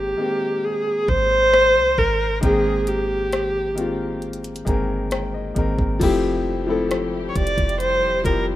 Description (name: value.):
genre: contemporary R&B.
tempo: 67 BPM.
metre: 4/4.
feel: straight.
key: unclear.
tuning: A4 = 439 Hz.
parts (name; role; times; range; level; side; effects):
rich viola; melody; 0.0-8.5 s; G4 to D5; -19 LUFS; equal; none.
warm grand piano; accompaniment; 0.0-8.6 s; Eb3 to Ab5; -24 LUFS; left 3 dB; none.
soft 808-style bass; bass; 0.0-8.6 s; E1 to C2; -27 LUFS; right 1 dB; none.
smooth R&B drum kit; drums; 1.1-8.5 s; crash cymbal, hi-hat, kick drum, rim click; -24 LUFS; equal; none.
muted studio string section; sustained chords; 6.0-8.6 s; F3 to G4; -32 LUFS; left 1 dB; none.
room: light reverb, small room ambience.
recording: rough home demo mix.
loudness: -18 LUFS.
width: side -14 dB against mid.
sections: 0.0-6.0 A section; 6.0-8.6 B section.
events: grand piano fill 4.2-6.0.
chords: 0.0 Abmaj9; 6.0 Fmaj9.